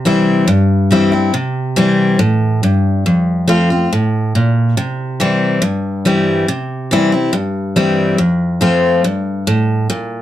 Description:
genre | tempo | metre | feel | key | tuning
country | 140 BPM | 4/4 | straight | C mixolydian | A4 = 437 Hz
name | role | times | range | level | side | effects
picked steel-string acoustic guitar | solo | 0.0-10.2 s | F2 to F4 | -12 LUFS | equal | none
room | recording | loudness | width
light reverb | none | -12 LUFS | side -12 dB against mid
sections
0.0-10.2 A section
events
none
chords
0.0 C; 3.1 F; 4.8 C; 8.2 F

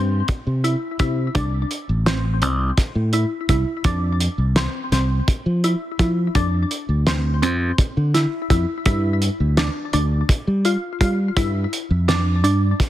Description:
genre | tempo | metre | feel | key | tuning
progressive instrumental, band music in an uneven meter | 168 BPM (eighths) | 7/8 | straight | C major | A4 = 441 Hz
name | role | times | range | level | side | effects
glassy wavetable pluck | arpeggios | 0.0-12.8 s | C4 to F4 | -24 LUFS | equal | chorus, ping-pong delay
fingered electric bass | bass | 0.0-12.7 s | A1 to G3 | -19 LUFS | equal | none
cloth-damped thuddy drum kit | drums | 0.3-12.9 s | hi-hat, kick drum, snare drum | -20 LUFS | equal | soft clipping on kick
room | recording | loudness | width
studio reverb | dense, heavily limited modern master | -18 LUFS | side -13 dB against mid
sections
0.0-12.9 A section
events
none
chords
0.0 C; 3.9 F5; 8.9 G5

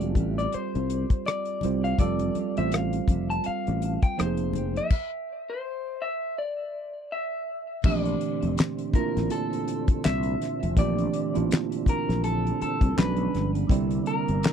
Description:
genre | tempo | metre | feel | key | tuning
R&B, neo-soul | 82 BPM | 4/4 | swing 57% on 16ths | unclear | A4 = 440 Hz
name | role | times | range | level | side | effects
electric guitar through a small old amp | melody | 0.0-14.5 s | A4 to A5 | -31 LUFS | left 3 dB | tape echo
mellow tine electric piano | accompaniment | 0.0-14.5 s | D3 to C5 | -29 LUFS | right 16 dB | none
sustaining fretless electric bass | bass | 0.0-14.4 s | E1 to C2 | -27 LUFS | left 1 dB | wide subtle chorus
damped 70s drum kit | drums | 0.0-14.5 s | crash cymbal, handclaps, hi-hat, kick drum, rim click, snare drum | -23 LUFS | left 1 dB | none
congas | percussion | 0.2-4.7 s | none | -38 LUFS | left 8 dB | none
tonewheel organ | sustained chords | 7.8-14.5 s | Bb2 to E4 | -34 LUFS | left 3 dB | chorus vibrato, slow rotary speaker
room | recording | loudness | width
little or no reverb | dry, close 1970s-style studio recording | -24 LUFS | side -8 dB against mid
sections
0.0-7.8 A section; 7.8-14.5 B section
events
stop 4.9-7.8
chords
0.0 Fadd9; 2.0 F69; 4.2 Fm7; 4.9 N.C.; 7.8 Bbmaj9; 13.0 Bdim7; 13.7 C9

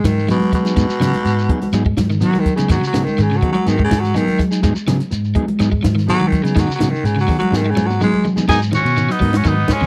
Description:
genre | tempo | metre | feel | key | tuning
afrobeat | 124 BPM | 4/4 | straight | G# minor | A4 = 440 Hz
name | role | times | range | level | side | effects
raspy baritone saxophone | melody | 0.0-8.3 s | B2 to G#3 | -23 LUFS | equal | none
electric guitar at the edge of break-up | arpeggios | 0.0-9.9 s | C#3 to G#3 | -25 LUFS | equal | spring reverb
mellow electric guitar | stabs | 0.0-9.7 s | F#3 to A#4 | -25 LUFS | equal | none
fingered electric bass | bass | 0.0-9.9 s | F#2 to F#3 | -21 LUFS | equal | none
compact cocktail drum kit | drums | 0.0-9.9 s | crash cymbal, hi-hat, kick drum, ride cymbal, snare drum, toms | -22 LUFS | equal | none
congas | percussion | 0.1-9.9 s | none | -27 LUFS | equal | none
shekere | percussion | 0.1-9.9 s | none | -28 LUFS | equal | none
breathy tenor saxophone | melody | 8.5-9.9 s | C#4 to G#4 | -21 LUFS | equal | none
brilliant trumpet | second line | 8.5-9.9 s | G#3 to D#4 | -27 LUFS | equal | none
room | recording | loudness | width
studio reverb | dry, close 1970s-style studio recording | -16 LUFS | mono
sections
0.0-8.5 A section; 8.5-9.9 B section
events
baritone saxophone solo 0.0-8.5; drum fill 7.5-8.5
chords
0.0 G#m7; 8.5 G#m9

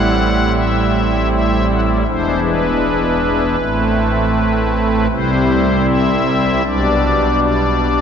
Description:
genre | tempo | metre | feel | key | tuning
classical, chorale-style piece for pipe organ | 79 BPM | 4/4 | rubato | unclear | A4 = 440 Hz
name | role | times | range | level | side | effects
pipe organ, strings celeste | solo | 0.0-8.0 s | E1 to F#5 | -13 LUFS | equal | none
room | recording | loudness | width
wet cathedral reverb, RT60 5.1 s | dark, warm production, nothing above 7.7 kHz | -13 LUFS | side -7 dB against mid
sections
0.0-8.0 A section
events
none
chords
0.0 Am7; 2.1 E7; 3.6 Am; 5.1 C; 6.7 G/B

